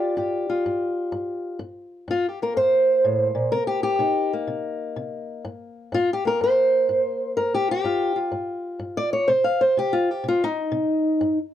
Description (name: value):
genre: acoustic country blues, solo or duo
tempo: 125 BPM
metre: 4/4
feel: swing 66% on 8ths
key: G minor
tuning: A4 = 442 Hz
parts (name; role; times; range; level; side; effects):
- fingerpicked old ladder-braced acoustic guitar; solo; 0.0-11.5 s; G2 to F5; -20 LUFS; equal; none
room: light reverb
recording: dry, close 1970s-style studio recording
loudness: -20 LUFS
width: side -11 dB against mid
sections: 0.0-1.6 A section; 1.6-11.5 B section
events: steel-string acoustic guitar solo 1.6-11.5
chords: 0.0 G5; 1.6 Gm; 3.5 Cm7; 5.4 Gm7; 9.3 N.C.